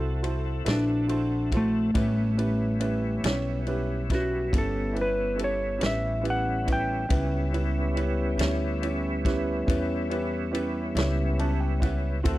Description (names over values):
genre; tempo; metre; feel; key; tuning
slow blues; 47 BPM (dotted quarters); 12/8; straight; A mixolydian; A4 = 440 Hz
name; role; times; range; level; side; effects
clean lap steel guitar; melody; 0.0-8.4 s; A3 to G5; -28 LUFS; equal; none
warm upright piano; accompaniment; 0.0-12.4 s; G3 to A5; -32 LUFS; right 3 dB; none
tonewheel organ; sustained chords; 0.0-12.4 s; G3 to A4; -32 LUFS; left 1 dB; slow rotary speaker, chorus vibrato
upright bass; bass; 0.0-12.4 s; G1 to E2; -29 LUFS; equal; none
vintage drum kit; drums; 0.2-12.4 s; kick drum, ride cymbal, snare drum; -28 LUFS; equal; none
warm horn section; sustained chords; 12.2-12.4 s; F#4 to F#5; -38 LUFS; left 2 dB; none
room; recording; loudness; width
little or no reverb; dry, close 1970s-style studio recording; -24 LUFS; side -16 dB against mid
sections
0.0-12.4 A section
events
electric slide guitar solo 0.0-12.4; upright piano fill 11.0-12.2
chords
0.0 D9; 2.0 A9